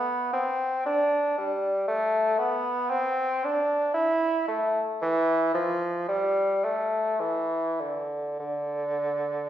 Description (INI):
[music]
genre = classical, baroque-style fantasia for unaccompanied bassoon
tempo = 49-60 BPM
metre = 3/4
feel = rubato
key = unclear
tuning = A4 = 438 Hz
[part]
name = warm bassoon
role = solo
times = 0.0-9.5 s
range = D3 to E4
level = -24 LUFS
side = equal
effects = none
[sound]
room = wet recital hall reverb, RT60 1.3 s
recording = recorded in a church or concert hall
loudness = -24 LUFS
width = side -11 dB against mid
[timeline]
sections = 0.0-9.5 A section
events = none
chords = none